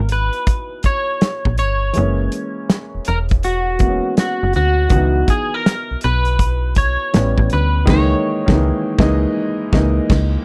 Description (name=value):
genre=R&B, neo-soul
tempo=81 BPM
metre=4/4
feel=swing 64% on 16ths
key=C# dorian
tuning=A4 = 439 Hz
part: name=electric guitar at the edge of break-up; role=melody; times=0.0-10.4 s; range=F#4 to C#5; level=-23 LUFS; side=equal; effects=analog chorus, slapback echo
part: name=clear concert grand piano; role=accompaniment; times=0.0-10.4 s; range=D#3 to D#5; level=-24 LUFS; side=equal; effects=none
part: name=slap-like FM bass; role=bass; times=0.0-10.4 s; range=E1 to D2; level=-20 LUFS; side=equal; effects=none
part: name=warm soul drum kit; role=drums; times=0.1-10.4 s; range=crash cymbal, hi-hat, kick drum, snare drum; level=-18 LUFS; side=equal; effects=none
room=little or no reverb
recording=dry, close 1970s-style studio recording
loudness=-17 LUFS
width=mono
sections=0.0-10.4 A section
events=band accent 7.9-10.4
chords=0.0 C#m11; 1.9 F#7; 4.9 C#m11; 7.1 A9; 7.9 C#m69